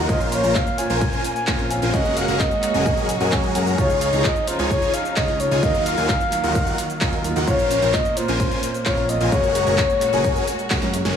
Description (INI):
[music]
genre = EDM, festival progressive house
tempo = 130 BPM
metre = 4/4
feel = straight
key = unclear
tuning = A4 = 440 Hz
[part]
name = warm grand piano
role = accompaniment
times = 0.0-11.2 s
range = Bb2 to F5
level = -28 LUFS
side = right 3 dB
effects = sidechain pumping, dub echo
[part]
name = warm symphonic string section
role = sustained chords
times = 0.0-11.1 s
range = Bb2 to Gb4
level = -32 LUFS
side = left 2 dB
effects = sidechain pumping
[part]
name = supersaw chords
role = riff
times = 0.0-11.2 s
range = Db4 to Bb5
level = -25 LUFS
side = equal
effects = phaser, sidechain pumping, low-pass filter, dub echo
[part]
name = fat analog bass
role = bass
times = 0.0-11.1 s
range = Gb1 to Gb2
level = -25 LUFS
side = equal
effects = sidechain pumping
[part]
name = breathy flute-like synth lead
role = melody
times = 0.1-10.7 s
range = C5 to Ab5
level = -23 LUFS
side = left 2 dB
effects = chorus, dub echo
[part]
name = big-room dance drum kit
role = drums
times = 0.1-11.1 s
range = handclaps, hi-hat, shaker, snare drum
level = -28 LUFS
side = equal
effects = none
[part]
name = electronic kick drum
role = drums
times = 0.1-10.8 s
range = none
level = -24 LUFS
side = equal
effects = none
[sound]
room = light reverb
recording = small room reverb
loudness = -18 LUFS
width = side -8 dB against mid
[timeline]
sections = 0.0-11.2 A section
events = drop 0.0-11.2; drum fill 10.7-11.2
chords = 0.1 Bbmadd9; 1.9 Gbadd9; 3.8 Dbadd9; 5.6 Ebmadd9; 7.5 Bbmadd9; 9.3 Gbadd9